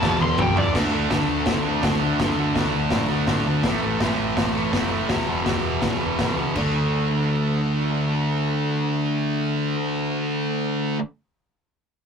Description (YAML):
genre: garage rock duo or trio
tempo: 165 BPM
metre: 4/4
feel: straight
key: unclear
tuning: A4 = 440 Hz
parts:
  - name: overdriven slide guitar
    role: melody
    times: 0.0-0.7 s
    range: D5 to C6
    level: -24 LUFS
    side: left 2 dB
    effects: none
  - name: thick fuzz guitar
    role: riff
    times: 0.0-11.0 s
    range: E2 to D4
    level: -22 LUFS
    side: equal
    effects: distortion
  - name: hollow-body short-scale fingered electric bass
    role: bass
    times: 0.0-10.9 s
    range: E1 to A2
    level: -30 LUFS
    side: equal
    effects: none
  - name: raw garage drum kit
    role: drums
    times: 0.0-6.6 s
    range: crash cymbal, hi-hat, kick drum, snare drum, toms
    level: -25 LUFS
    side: equal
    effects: none
room: moderate booth ambience, RT60 0.2 s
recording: rough rehearsal-room recording, tube saturation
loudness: -20 LUFS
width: side -6 dB against mid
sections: 0.7-6.5 A section; 6.5-9.5 B section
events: drum fill 0.0-0.7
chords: 0.0 E5; 0.7 D5; 3.6 A5; 5.1 E5; 6.5 D5